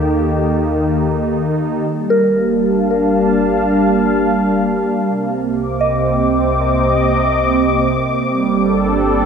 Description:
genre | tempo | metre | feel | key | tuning
ambient | 75 BPM | 4/4 | straight | G minor | A4 = 439 Hz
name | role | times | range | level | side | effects
warm analog pad | sustained chords | 0.0-9.3 s | C3 to D6 | -14 LUFS | right 1 dB | chorus
soft synth bell | arpeggios | 0.0-8.3 s | A4 to Eb5 | -21 LUFS | left 1 dB | chorus, tremolo, ping-pong delay
round analog bass | bass | 0.0-9.3 s | G1 to Eb2 | -26 LUFS | equal | none
wind-like tuned noise texture | texture | 0.0-1.9 s | A5 | -45 LUFS | right 3 dB | none
room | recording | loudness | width
wet plate reverb, RT60 3.3 s | dreamy mix soaked in reverb | -13 LUFS | side -6 dB against mid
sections
0.0-1.9 A section; 1.9-9.3 B section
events
fade-in on analog synth bass 1.9-9.3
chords
0.0 Eb; 1.9 Gm7; 5.1 Cm7; 8.3 Gm

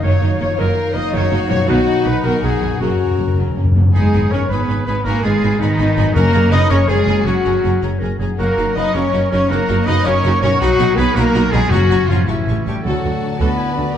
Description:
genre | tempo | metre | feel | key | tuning
cinematic, heroic adventure film score | 108 BPM (dotted quarters) | 6/8 | straight | F# major | A4 = 440 Hz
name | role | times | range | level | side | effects
warm symphonic violin section | melody | 0.0-14.0 s | D#4 to D#5 | -29 LUFS | left 4 dB | none
mellow hollow silver concert flute | second line | 0.0-14.0 s | D#5 to D#6 | -28 LUFS | left 1 dB | none
rich symphonic violin section | second line | 0.0-14.0 s | D#4 to C#6 | -31 LUFS | left 3 dB | none
warm clarinet | second line | 0.0-3.8, 7.8-8.4, 12.8-14.0 s | C#4 to C#5 | -28 LUFS | left 2 dB | none
warm oboe | second line | 0.0-12.8 s | B3 to D#5 | -27 LUFS | right 2 dB | none
rich symphonic viola section | accompaniment | 0.0-14.0 s | C#3 to A4 | -26 LUFS | right 2 dB | none
mellow French horn section | sustained chords | 0.0-14.0 s | F#3 to D#5 | -20 LUFS | left 4 dB | none
concert harp | arpeggios | 0.0-14.0 s | F#2 to A5 | -24 LUFS | left 6 dB | none
clear symphonic double bass section | bass | 0.0-14.0 s | F#1 to D2 | -20 LUFS | right 3 dB | none
rich symphonic cello section | bass | 0.0-13.9 s | D2 to D#4 | -22 LUFS | right 2 dB | none
timpani | percussion | 2.8-3.9, 6.2-6.7, 11.7-13.4 s | F#2 to D3 | -18 LUFS | left 1 dB | none
clear trumpet | stabs | 3.9-12.8 s | D#4 to D#5 | -25 LUFS | right 2 dB | none
room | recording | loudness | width
wet scoring stage reverb, RT60 1.9 s | dark, warm production | -13 LUFS | side -9 dB against mid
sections
0.0-3.9 A section; 3.9-12.8 B section; 12.8-14.0 C section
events
timpani fill 2.8-3.9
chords
0.0 D#madd9/F#; 1.7 B; 2.8 F#; 3.9 G#m; 6.2 F#add9; 8.4 D#madd9/F#; 10.6 B; 11.7 F#; 12.3 A7; 12.8 D

